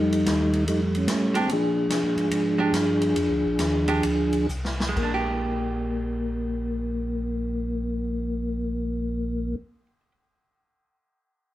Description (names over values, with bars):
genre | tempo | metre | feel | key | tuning
soul jazz organ trio | 125-147 BPM | 4/4 | swing 66% on 8ths | Bb mixolydian | A4 = 440 Hz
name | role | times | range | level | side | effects
percussive tonewheel organ | melody | 0.0-9.6 s | F3 to Ab4 | -24 LUFS | equal | slow rotary speaker, chorus vibrato
mellow tonewheel organ | bass | 0.0-9.5 s | Bb1 to C3 | -30 LUFS | equal | overdrive, chorus vibrato, slow rotary speaker
swinging big-band drum kit | drums | 0.1-5.1 s | crash cymbal, hi-hat, kick drum, ride cymbal, snare drum | -32 LUFS | equal | none
archtop guitar, miked and amplified | accompaniment | 1.3-10.1 s | Ab3 to G4 | -28 LUFS | right 4 dB | none
room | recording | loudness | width
light reverb | band playing live in one room | -23 LUFS | side -14 dB against mid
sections
0.0-5.0 A section; 5.0-8.8 B section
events
slowing down 1.5-5.0; drum fill 4.5-5.0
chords
0.0 F9; 1.5 Bb13; 5.0 Bb6